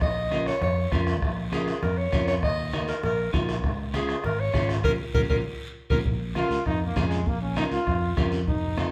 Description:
latin, cumbia; 198 BPM; 4/4; straight; Bb minor; A4 = 440 Hz
clear clarinet; melody; 0.0-6.0 s; F4 to Eb5; -31 LUFS; equal
fingered electric bass; bass; 0.0-8.8 s; F1 to F2; -32 LUFS; equal
bombo; percussion; 0.0-8.9 s; -32 LUFS; equal
congas; percussion; 0.0-8.9 s; -37 LUFS; equal
guiro; percussion; 0.0-8.9 s; -46 LUFS; equal
electric guitar at the edge of break-up; accompaniment; 0.3-8.9 s; C4 to Bb4; -35 LUFS; equal; spring reverb
brilliant trombone; second line; 6.4-8.9 s; Ab3 to F4; -31 LUFS; equal
moderate large studio reverb, RT60 1.0 s; band playing live in one room; -26 LUFS; mono
0.0-6.1 A section; 6.1-8.9 B section
band accent 4.8-6.1; trombone solo 6.1-8.9
0.0 Bbm; 2.4 Ebm; 3.6 Db; 4.8 Bbm
| 0.01 0.32 0.62 0.92 | 1.22 1.52 1.83 2.13 | 2.43 2.73 3.04 3.34 | 3.64 3.94 4.24 4.55 | 4.85 5.15 5.45 5.76 | 6.06 6.36 6.66 6.96 | 7.27 7.57 7.87 8.17 | 8.47 8.78

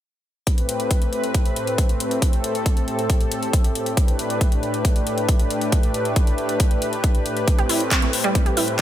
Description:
uplifting trance; 137 BPM; 4/4; straight; A minor; A4 = 440 Hz
lush unison pad; sustained chords; 0.5-8.8 s; A2 to B4; -24 LUFS; left 1 dB; chorus, sidechain pumping
big-room dance drum kit; drums; 0.5-8.8 s; handclaps, hi-hat; -26 LUFS; left 2 dB; small room reverb
electronic kick drum; drums; 0.5-8.8 s; -19 LUFS; equal; small room reverb
wide unison pluck; arpeggios; 7.6-8.8 s; G3 to G4; -23 LUFS; right 3 dB; flanger, sidechain pumping, dub echo
light reverb; -18 LUFS; side -12 dB against mid
0.5-8.8 A section
0.5 Am7; 4.0 A9sus4; 7.5 Am7
| 0.47 0.91 1.34 1.78 | 2.22 2.66 3.10 3.54 | 3.97 4.41 4.85 5.29 | 5.72 6.16 6.60 7.04 | 7.48 7.91 8.35 8.79

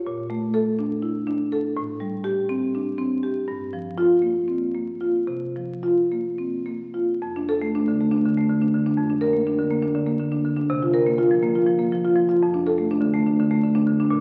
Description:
classical, contemporary piece for solo marimba; 217-254 BPM (eighths); 7/8; rubato; F major; A4 = 440 Hz
marimba with soft mallets; solo; 0.0-14.2 s; F2 to Bb4; -23 LUFS; equal
wet recital hall reverb, RT60 1.7 s; very old 78 rpm record, vinyl crackle; -23 LUFS; mono
0.0-7.2 A section; 7.2-14.2 B section
0.1 Bbmaj7; 1.8 Am7; 3.5 Gm7; 5.3 C7sus4; 7.2 F6; 9.0 Bb/F; 10.7 C7sus4; 12.4 F6
| 0.09 0.33 0.57 0.81 1.05 1.29 1.54 | 1.78 2.02 2.26 2.50 2.75 2.99 3.23 | 3.48 3.73 3.98 4.23 4.49 4.75 5.02 | 5.29 5.56 5.84 6.11 6.38 6.65 6.93 | 7.20 7.46 7.71 7.97 8.22 8.47 8.72 | 8.97 9.22 9.47 9.71 9.96 10.21 10.45 | 10.70 10.94 11.19 11.43 11.68 11.92 12.17 | 12.41 12.66 12.90 13.14 13.38 13.62 13.86 | 14.10

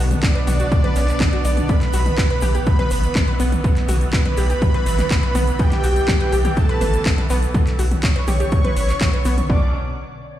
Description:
melodic techno; 123 BPM; 4/4; straight; A4 = 440 Hz
muted studio string section; sustained chords; 0.0-9.7 s; B2 to D4; -30 LUFS; right 2 dB; sidechain pumping
analog pluck; arpeggios; 0.0-9.7 s; B3 to D5; -28 LUFS; equal; chorus, cassette tape, sidechain pumping, ping-pong delay
round analog bass; bass; 0.0-9.7 s; A1 to B1; -20 LUFS; equal; sidechain pumping
swarming drone; drone; 0.0-9.5 s; B2 to D3; -32 LUFS; left 2 dB
house drum kit; drums; 0.1-9.5 s; handclaps, hi-hat, toms; -26 LUFS; left 1 dB; overdrive
egg shaker; percussion; 0.1-9.5 s; -39 LUFS; left 6 dB
wide unison lead; melody; 0.2-9.7 s; D4 to D5; -26 LUFS; right 1 dB; sidechain pumping, dub echo
soft supersaw; second line; 0.2-9.7 s; D5 to D6; -30 LUFS; equal; sidechain pumping, ping-pong delay
electronic kick drum; drums; 0.2-9.6 s; -19 LUFS; equal; overdrive
light reverb, digital ambience; played on a big sound system in a bare room, stone room reverb; -16 LUFS; side -12 dB against mid
0.0-9.5 A section
drop 0.0-9.5
0.0 Bm; 1.7 Em7; 9.5 Bm
0.23 0.72 1.20 | 1.69 2.18 2.67 3.15 | 3.64 4.13 4.62 5.11 | 5.59 6.08 6.57 7.06 | 7.55 8.03 8.52 9.01 | 9.50

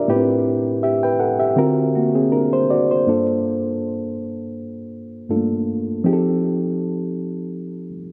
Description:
soul; 80 BPM; 4/4; swing 54% on 16ths; G dorian; A4 = 441 Hz
reed electric piano; solo; 0.0-8.1 s; G2 to G5; -20 LUFS; equal; spring reverb
light reverb; dark, warm production; -20 LUFS; mono
0.0-3.1 A section; 3.1-8.1 B section
0.1 Am9; 1.6 D7alt; 3.1 Gm9; 6.1 F9
| 0.08 0.83 1.57 2.32 | 3.06 3.81 4.56 5.30 | 6.05 6.80 7.55

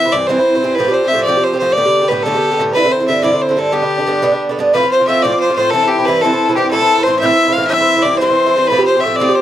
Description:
celtic folk, Celtic jig; 121 BPM (dotted quarters); 6/8; straight; A4 = 440 Hz
clear fiddle; melody; 0.0-9.4 s; G4 to F5; -14 LUFS; left 1 dB
Irish bouzouki; accompaniment; 0.0-9.4 s; G2 to G4; -16 LUFS; right 3 dB
breathy mellow mid whistle; second line; 4.7-9.4 s; G5 to G6; -19 LUFS; left 8 dB
light reverb; dry, close 1970s-style studio recording; -11 LUFS; side -11 dB against mid
0.0-4.7 A section; 4.7-9.4 A section
0.0 C; 0.8 Fadd9; 1.8 Gadd9; 2.8 Cadd9; 3.8 G; 4.7 F; 5.7 C; 6.7 Am; 7.7 C; 8.7 Fadd9
0.29 | 0.79 1.28 | 1.77 2.27 | 2.76 3.26 | 3.75 4.25 | 4.74 5.23 | 5.73 6.22 | 6.72 7.21 | 7.71 8.20 | 8.70 9.19

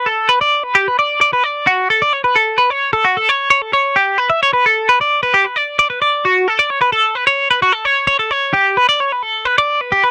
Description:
rock; 131 BPM; 5/4; straight; D major; A4 = 440 Hz
twelve-string electric guitar; solo; 0.0-10.1 s; F#4 to E5; -14 LUFS; equal; harmonic tremolo
little or no reverb; dry, close 1970s-style studio recording; -14 LUFS; mono
0.0-10.1 A section
0.29 0.75 1.21 | 1.66 2.12 2.58 3.04 3.50 | 3.95 4.41 4.87 5.33 5.78 | 6.24 6.70 7.16 7.62 8.07 | 8.53 8.99 9.45 9.90

